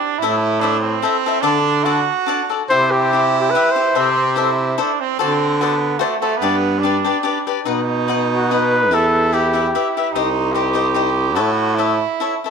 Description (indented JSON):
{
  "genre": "mexican folk, mariachi",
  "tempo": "146 BPM",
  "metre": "3/4",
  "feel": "rubato",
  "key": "unclear",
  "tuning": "A4 = 438 Hz",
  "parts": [
    { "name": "bright trumpet", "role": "second line", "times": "0.0-12.4 s", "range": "A3 to G4", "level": "-20 LUFS", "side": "right 9 dB", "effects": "none" },
    { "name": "cavaquinho", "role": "accompaniment", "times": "0.2-12.5 s", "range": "D4 to F#5", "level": "-21 LUFS", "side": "left 10 dB", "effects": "none" },
    { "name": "clear baritone saxophone", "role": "bass", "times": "0.2-12.0 s", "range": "C2 to D3", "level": "-19 LUFS", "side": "equal", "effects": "none" },
    { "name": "warm trumpet", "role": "melody", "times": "2.7-4.6, 8.4-10.0 s", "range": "F#4 to C5", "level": "-18 LUFS", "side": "left 1 dB", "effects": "tape echo" }
  ],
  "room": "moderate echo chamber reverb, RT60 1.6 s, studio reverb",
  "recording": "1960s-style stereo with parts hard left and right",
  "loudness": "-15 LUFS",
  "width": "side -6 dB against mid",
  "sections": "0.0-7.7 A section; 7.7-12.5 B section",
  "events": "none",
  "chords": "0.2 Am; 1.4 D; 2.7 C; 4.0 Am/C; 5.2 D7; 6.4 G; 7.7 B; 8.9 Em; 10.1 Cm; 11.4 A"
}